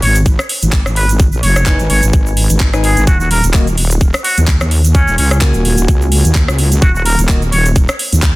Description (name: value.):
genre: bass house.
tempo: 128 BPM.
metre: 4/4.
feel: swing 56% on 16ths.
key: unclear.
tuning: A4 = 438 Hz.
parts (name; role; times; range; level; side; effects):
trumpet with straight mute; melody; 0.0-7.7 s; C#4 to C#5; -18 LUFS; equal; tape echo.
wobble bass; bass; 0.0-8.3 s; D#1 to D#2; -13 LUFS; equal; chorus, sidechain pumping.
garage drum kit; drums; 0.0-8.3 s; handclaps, hi-hat, rim click; -18 LUFS; equal; soft clipping on snare.
tube shaker; percussion; 0.2-8.3 s; none; -25 LUFS; right 4 dB; none.
electronic kick drum; drums; 0.3-8.3 s; none; -12 LUFS; equal; none.
percussive organ stab; stabs; 1.7-7.4 s; A#3 to G#5; -22 LUFS; left 2 dB; chorus, cassette tape, sidechain pumping, tape echo.
room: little or no reverb.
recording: dense, heavily limited modern master.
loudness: -10 LUFS.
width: side -20 dB against mid.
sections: 0.0-8.4 A section.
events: filter sweep on synth stab 0.0-8.4.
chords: 0.0 G#m; 3.1 D#m.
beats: 0.26 0.73 | 1.20 1.67 2.13 2.60 | 3.07 3.54 4.01 4.48 | 4.95 5.42 5.88 6.35 | 6.82 7.29 7.76 8.23.